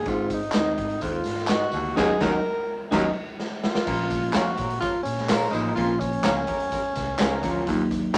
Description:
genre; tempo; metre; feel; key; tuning
uptempo 1960s-style soul; 126 BPM; 4/4; straight; unclear; A4 = 439 Hz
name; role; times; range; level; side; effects
breathy tenor saxophone; melody; 0.0-7.9 s; Db4 to Bb4; -30 LUFS; equal; none
vintage muted fingered electric bass; bass; 0.0-8.2 s; Ab1 to Bb2; -38 LUFS; equal; none
mellow tine electric piano; accompaniment; 0.1-8.2 s; F3 to Eb4; -31 LUFS; equal; none
growling baritone saxophone; riff; 0.1-7.9 s; Eb2 to Bb2; -32 LUFS; equal; none
raw garage drum kit; drums; 0.1-8.2 s; crash cymbal, hi-hat, kick drum, snare drum; -30 LUFS; equal; none
tambourine and handclaps; percussion; 0.1-8.2 s; none; -35 LUFS; equal; none
electric guitar through a small old amp; stabs; 0.5-8.2 s; Db4 to F5; -32 LUFS; equal; none
clear horn section; second line; 2.0-8.2 s; F3 to Bb4; -32 LUFS; equal; none
room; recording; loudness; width
moderate club reverb, RT60 0.6 s; none; -25 LUFS; mono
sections
0.0-3.9 A section; 3.9-8.2 B section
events
band accent 2.0-3.9; drum fill 3.4-3.9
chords
0.1 Ab; 2.0 Ebm7; 3.9 Bbm; 7.7 Ebm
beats
| 0.07 0.54 1.02 1.50 | 1.97 2.45 2.92 3.40 | 3.87 4.35 4.82 5.30 | 5.77 6.25 6.72 7.20 | 7.67 8.15

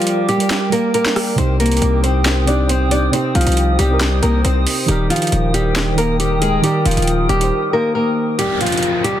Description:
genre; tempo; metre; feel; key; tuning
hip hop, trap; 137 BPM; 4/4; half-time; unclear; A4 = 440 Hz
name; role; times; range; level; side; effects
nylon-string guitar; melody; 0.0-9.2 s; F3 to D5; -18 LUFS; left 1 dB; low-pass filter, tape echo
muted felt-like synth keys; accompaniment; 0.0-8.4 s; C3 to D5; -21 LUFS; right 4 dB; chorus, low-pass filter
granular cloud pad; sustained chords; 0.0-8.4 s; Bb4 to Eb6; -24 LUFS; left 1 dB; built-in reverb
trap drum kit; drums; 0.0-9.2 s; handclaps, hi-hat, rim click, snare drum; -22 LUFS; right 1 dB; none
distorted 808-style bass; bass; 1.4-7.5 s; Eb1 to C2; -17 LUFS; equal; distortion
downlifter; sound effects; 8.4-9.2 s; none; -21 LUFS; left 1 dB; none
room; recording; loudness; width
light reverb, digital ambience; dense, heavily limited modern master; -14 LUFS; side -11 dB against mid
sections
0.0-8.4 A section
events
break 0.0-1.4, 7.5-8.4; kick muted 8.4-9.2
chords
0.0 Gm; 1.4 Cm; 4.9 Eb; 8.4 N.C.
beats
0.07 0.51 0.94 | 1.38 1.82 2.26 2.69 | 3.13 3.57 4.01 4.45 | 4.88 5.32 5.76 6.20 | 6.64 7.07 7.51 7.95 | 8.39 8.83

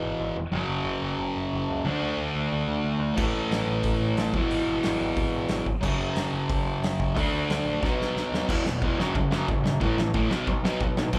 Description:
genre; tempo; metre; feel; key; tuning
punk rock; 181 BPM; 4/4; straight; E mixolydian; A4 = 443 Hz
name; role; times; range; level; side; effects
sludgy distorted guitar; riff; 0.0-11.2 s; E2 to D4; -28 LUFS; equal; overdrive
growling picked electric bass; bass; 0.0-11.2 s; E1 to A2; -37 LUFS; equal; overdrive
loose indie drum kit; drums; 3.2-11.2 s; crash cymbal, hi-hat, kick drum, ride cymbal, snare drum; -31 LUFS; equal; none
room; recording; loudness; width
light reverb; band playing live in one room; -26 LUFS; mono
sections
0.0-8.5 A section; 8.5-11.2 B section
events
half time 0.0-8.5; drum fill 7.8-8.5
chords
0.0 E/G#; 0.5 F#5; 1.9 D5; 3.2 A5; 4.3 E/G#; 5.8 F#5; 7.2 D5; 7.8 B; 8.5 E5; 9.0 F#m; 9.8 A5; 10.3 B5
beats
0.19 | 0.53 0.86 1.19 1.52 | 1.85 2.19 2.52 2.85 | 3.18 3.51 3.84 4.17 | 4.50 4.84 5.17 5.50 | 5.83 6.16 6.49 6.82 | 7.15 7.48 7.81 8.14 | 8.48 8.81 9.14 9.47 | 9.80 10.13 10.46 10.79 | 11.12

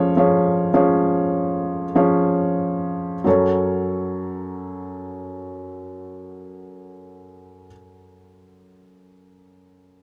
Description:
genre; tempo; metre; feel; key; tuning
folk; 44-53 BPM; 4/4; straight; F# harmonic minor; A4 = 441 Hz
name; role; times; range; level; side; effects
felt-muted upright piano; accompaniment; 0.0-10.0 s; E#1 to C#5; -22 LUFS; equal; none
room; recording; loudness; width
moderate small room reverb, RT60 0.5 s; none; -20 LUFS; mono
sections
0.0-3.3 A section; 3.3-8.6 B section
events
slowing down 0.0-3.3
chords
0.0 C#/E#; 3.3 F#m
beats
0.73 1.95 | 3.25 4.60 5.94 7.29

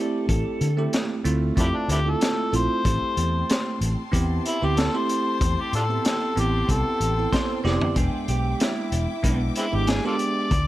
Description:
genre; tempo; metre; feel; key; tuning
straight-eighth soul blues; 94 BPM; 4/4; swing 54% on 16ths; A minor; A4 = 440 Hz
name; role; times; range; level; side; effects
electric guitar through a small old amp; second line; 0.0-0.9, 7.3-9.4 s; E4 to D5; -32 LUFS; right 2 dB; spring reverb
bell-like tine electric piano; accompaniment; 0.0-10.5 s; G#3 to G5; -27 LUFS; right 3 dB; phaser
vintage muted fingered electric bass; bass; 0.3-10.6 s; E1 to D3; -24 LUFS; left 1 dB; none
crunchy breakbeat drum kit; drums; 0.3-10.7 s; hi-hat, kick drum, snare drum, toms; -26 LUFS; equal; none
overdriven harmonica; melody; 1.6-10.7 s; G#3 to D5; -27 LUFS; left 2 dB; none
rich studio string section; sustained chords; 2.8-10.7 s; D5 to D6; -37 LUFS; left 6 dB; none
room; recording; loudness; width
studio reverb; none; -21 LUFS; side -15 dB against mid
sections
0.0-10.7 A section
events
drum fill 7.6-8.0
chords
0.0 Dm7; 2.8 Am7; 8.0 E7#9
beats
| 0.29 0.93 1.57 2.21 | 2.85 3.49 4.13 4.77 | 5.41 6.04 6.68 7.32 | 7.96 8.60 9.23 9.87 | 10.51

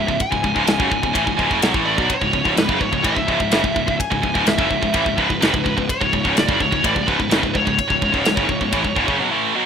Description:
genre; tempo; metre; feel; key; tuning
heavy metal; 127 BPM; 4/4; straight; C# minor; A4 = 440 Hz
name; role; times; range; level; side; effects
high-gain lead guitar; melody; 0.0-9.2 s; B4 to G#5; -22 LUFS; left 1 dB; distortion
heavy high-gain guitar; riff; 0.0-9.7 s; C#2 to A3; -21 LUFS; right 10 dB; distortion
tight distorted guitar; riff; 0.0-9.7 s; C#2 to A3; -24 LUFS; left 12 dB; distortion
fuzz picked electric bass; bass; 0.0-9.2 s; C#1 to B1; -28 LUFS; equal; overdrive
tight metal drum kit; drums; 0.1-9.2 s; kick drum, ride cymbal, snare drum; -22 LUFS; equal; none
room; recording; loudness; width
little or no reverb; rough home demo mix; -16 LUFS; side -7 dB against mid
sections
0.0-9.7 A section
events
none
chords
0.0 C#m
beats
| 0.20 0.67 1.15 1.62 | 2.10 2.57 3.04 3.52 | 3.99 4.46 4.94 5.41 | 5.88 6.36 6.83 7.30 | 7.78 8.25 8.72 9.20

